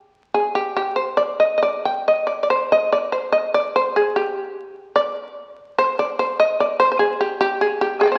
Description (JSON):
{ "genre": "japanese traditional, Japanese chamber music", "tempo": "67-77 BPM", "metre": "4/4", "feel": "rubato", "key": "G miyako bushi", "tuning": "A4 = 440 Hz", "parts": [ { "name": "shamisen", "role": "solo", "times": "0.3-8.2 s", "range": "G4 to Ab5", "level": "-20 LUFS", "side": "equal", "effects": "none" } ], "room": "wet recital hall reverb, RT60 1.6 s", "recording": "very old 78 rpm record, vinyl crackle", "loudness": "-20 LUFS", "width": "mono", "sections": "0.0-8.2 A section", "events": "none", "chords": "none", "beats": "0.75 1.62 | 2.49 3.33 4.15 4.97 | 5.78 6.57 7.37 8.17" }